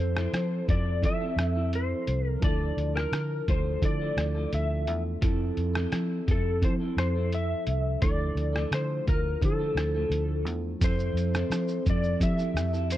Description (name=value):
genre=indie pop, bedroom pop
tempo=86 BPM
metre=4/4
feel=straight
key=F major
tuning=A4 = 440 Hz
part: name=clean lap steel guitar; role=melody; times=0.0-13.0 s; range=A4 to E5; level=-32 LUFS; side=left 1 dB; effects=ensemble chorus
part: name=electric guitar through a small old amp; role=accompaniment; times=0.0-13.0 s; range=F3 to A4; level=-35 LUFS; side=left 2 dB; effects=lush chorus, warbly pitch drift
part: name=reed electric piano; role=accompaniment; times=0.0-13.0 s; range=E3 to A5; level=-36 LUFS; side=right 5 dB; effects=fast tremolo, cassette tape
part: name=vintage muted fingered electric bass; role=bass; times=0.0-13.0 s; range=C2 to F3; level=-29 LUFS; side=equal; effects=none
part: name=lo-fi sampler-style drum kit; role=drums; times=0.2-13.0 s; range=hi-hat, kick drum, rim click, shaker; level=-29 LUFS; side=equal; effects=none
room=little or no reverb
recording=dry, close 1970s-style studio recording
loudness=-25 LUFS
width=side -14 dB against mid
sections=0.0-13.0 A section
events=none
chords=0.0 Fmaj7; 2.4 Dmadd9; 5.2 Fmaj7; 8.0 Dmadd9; 10.8 Fmaj7